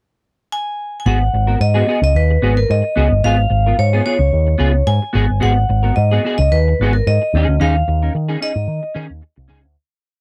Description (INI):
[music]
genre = disco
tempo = 110 BPM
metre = 4/4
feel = straight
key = G# dorian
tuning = A4 = 440 Hz
[part]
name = vibraphone with hard mallets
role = melody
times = 0.5-8.9 s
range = A#4 to G#5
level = -22 LUFS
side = equal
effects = none
[part]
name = semi-hollow electric guitar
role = accompaniment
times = 1.1-9.7 s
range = B3 to A#4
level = -23 LUFS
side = equal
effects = ensemble chorus
[part]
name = picked electric bass with an envelope filter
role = bass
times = 1.1-9.7 s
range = G1 to D#3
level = -17 LUFS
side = equal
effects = none
[sound]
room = little or no reverb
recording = dry, close 1970s-style studio recording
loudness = -16 LUFS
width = mono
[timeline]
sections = 0.0-1.1 pickup bar; 1.1-9.8 verse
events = fade-out 7.6-9.8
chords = 0.0 N.C.; 1.1 G#m7; 3.2 C#7/G#; 5.2 G#m7; 7.3 D#7sus4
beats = 0.53 | 1.07 1.61 2.16 2.70 | 3.24 3.79 4.33 4.88 | 5.42 5.97 6.51 7.06 | 7.60 8.14 8.69 9.23